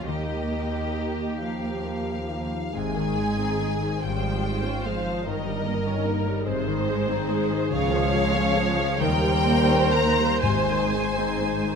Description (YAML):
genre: classical, slow romantic movement for symphony orchestra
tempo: 40-50 BPM (dotted quarters)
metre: 6/8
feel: rubato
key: Ab major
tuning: A4 = 440 Hz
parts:
  - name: warm symphonic violin section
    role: melody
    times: 0.0-11.8 s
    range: Eb5 to Bb5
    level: -30 LUFS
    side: left 3 dB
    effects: none
  - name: rich symphonic violin section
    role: second line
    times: 0.0-11.8 s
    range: G4 to Db5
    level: -30 LUFS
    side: equal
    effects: none
  - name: warm symphonic viola section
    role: accompaniment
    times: 0.0-11.8 s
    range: C3 to C5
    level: -29 LUFS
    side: right 3 dB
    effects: none
  - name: warm French horn section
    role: sustained chords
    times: 0.0-11.8 s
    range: Eb3 to Bb3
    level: -31 LUFS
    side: left 3 dB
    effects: none
  - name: concert harp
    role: arpeggios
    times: 0.0-11.8 s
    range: G2 to Eb5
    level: -31 LUFS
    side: left 9 dB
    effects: none
  - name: clear symphonic double bass section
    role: bass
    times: 0.0-11.6 s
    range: G1 to Eb2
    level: -31 LUFS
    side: right 4 dB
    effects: none
  - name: warm symphonic cello section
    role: bass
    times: 0.0-11.6 s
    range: Db2 to Ab2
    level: -31 LUFS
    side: right 4 dB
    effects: none
  - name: timpani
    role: percussion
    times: 0.1-1.4, 10.4-11.8 s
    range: Ab2 to Eb3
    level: -32 LUFS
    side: left 4 dB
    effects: none
room: moderate scoring stage reverb, RT60 1.7 s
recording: close, detailed microphones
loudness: -22 LUFS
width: side -6 dB against mid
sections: 0.0-11.8 A section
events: none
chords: 0.1 Eb; 2.7 Ab; 4.0 Db/Ab; 5.3 Eb7/G; 6.5 Ab; 7.7 Db; 9.0 Eb13; 10.4 Ab